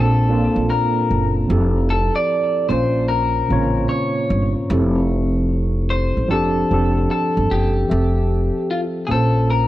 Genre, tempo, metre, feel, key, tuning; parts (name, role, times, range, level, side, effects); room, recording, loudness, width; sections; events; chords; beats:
hip hop; 75 BPM; 4/4; swing 66% on 16ths; F major; A4 = 439 Hz
electric guitar through a small old amp; melody; 0.0-9.7 s; F4 to D5; -22 LUFS; left 2 dB; tape echo
tine electric piano; accompaniment; 0.0-9.7 s; Bb2 to E5; -21 LUFS; right 1 dB; medium stereo tremolo, cassette tape
upright bass; bass; 0.0-9.7 s; F1 to Bb1; -19 LUFS; equal
small room ambience; -16 LUFS; side -15 dB against mid
0.0-7.9 A section; 7.9-9.7 B section
0.0 Bbmaj7; 1.5 Fmaj7; 2.7 Bbmadd9; 4.7 Fmaj7; 6.3 F6; 7.9 Fmaj7; 9.1 Bbmadd9
0.70 | 1.50 2.30 3.10 3.90 | 4.70 5.50 6.30 7.10 | 7.90 8.70 9.50